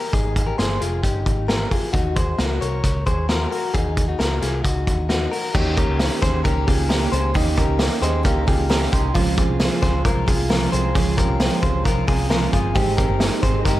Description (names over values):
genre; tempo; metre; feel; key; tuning
jangly indie pop; 133 BPM; 4/4; straight; unclear; A4 = 438 Hz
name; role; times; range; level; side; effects
direct-recorded clean electric guitar; arpeggios; 0.0-13.8 s; Db4 to Db5; -24 LUFS; left 3 dB; spring reverb, digital delay, slapback echo
picked electric bass; bass; 0.1-13.8 s; F1 to Eb2; -23 LUFS; equal; none
vintage drum kit; drums; 0.1-13.8 s; crash cymbal, hi-hat, kick drum, snare drum; -21 LUFS; equal; none
picked steel-string acoustic guitar; accompaniment; 5.5-13.8 s; Db3 to G4; -25 LUFS; right 4 dB; slapback echo
reed electric piano; accompaniment; 5.5-13.8 s; Db4 to C6; -30 LUFS; right 5 dB; slapback echo
phased string machine; sustained chords; 13.0-13.8 s; C3 to Eb4; -29 LUFS; right 2 dB; ensemble chorus, phaser
room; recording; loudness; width
light reverb, small room ambience; none; -18 LUFS; side -14 dB against mid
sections
0.0-5.6 A section; 5.6-13.8 B section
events
reed electric piano fill 7.8-9.2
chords
0.1 Abmaj7; 1.9 Ebm7; 5.6 Eb7; 9.2 Dbmaj7; 12.8 Abmaj7